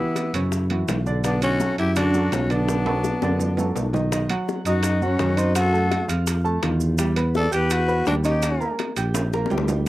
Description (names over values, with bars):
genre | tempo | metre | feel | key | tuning
Afro-Cuban jazz | 167 BPM | 4/4 | straight | B minor | A4 = 436 Hz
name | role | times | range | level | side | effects
growling tenor saxophone | melody | 0.0-8.8 s | B3 to A4 | -25 LUFS | equal | none
bright reedy concert flute | second line | 0.0-8.8 s | D4 to D5 | -29 LUFS | left 4 dB | none
warm concert grand piano | accompaniment | 0.0-9.9 s | C#3 to G6 | -27 LUFS | right 2 dB | none
bongos | percussion | 0.2-9.8 s | none | -31 LUFS | left 7 dB | none
maracas | percussion | 0.2-9.9 s | none | -36 LUFS | right 7 dB | none
timbales | percussion | 0.2-9.8 s | none | -31 LUFS | right 4 dB | none
mellow tuba | bass | 0.3-9.9 s | A#1 to F#2 | -23 LUFS | equal | none
room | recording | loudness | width
light reverb | dry, close 1970s-style studio recording | -20 LUFS | side -16 dB against mid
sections
0.0-4.1 A section; 4.1-9.9 B section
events
drum fill 2.7-4.1, 9.1-9.9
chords
0.0 C#m7b5; 0.5 F#5; 1.2 Bm7; 4.1 Badd9; 5.6 F#dim; 6.3 F7; 7.0 Emadd9; 8.4 D#7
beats
0.17 0.53 0.88 | 1.24 1.60 1.96 2.32 | 2.68 3.04 3.40 3.76 | 4.12 4.48 4.84 5.20 | 5.55 5.91 6.27 6.63 | 6.99 7.35 7.71 8.07 | 8.43 8.79 9.15 9.51 | 9.87